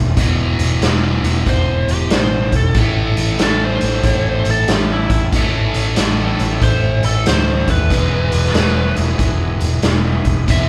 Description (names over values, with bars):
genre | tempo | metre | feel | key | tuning
blues rock power trio and southern rock | 93 BPM | 4/4 | swing 65% on 8ths | A major | A4 = 440 Hz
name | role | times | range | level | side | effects
sludgy distorted guitar | riff | 0.0-10.7 s | E2 to A3 | -23 LUFS | equal | overdrive
vintage muted fingered electric bass | bass | 0.0-10.7 s | E1 to D#2 | -21 LUFS | equal | none
raw garage drum kit | drums | 0.2-10.7 s | hi-hat, kick drum, snare drum | -20 LUFS | equal | none
biting lead guitar | melody | 1.5-10.7 s | E4 to E5 | -23 LUFS | equal | overdrive
overdriven tonewheel organ | sustained chords | 2.7-10.7 s | G#3 to A4 | -33 LUFS | equal | none
room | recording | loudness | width
light reverb | band playing live in one room | -16 LUFS | mono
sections
0.0-10.7 A section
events
none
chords
0.0 E5; 2.8 A; 7.9 E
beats
| 0.18 0.82 1.47 2.11 | 2.75 3.40 4.04 4.69 | 5.33 5.98 6.62 7.27 | 7.91 8.56 9.20 9.85 | 10.49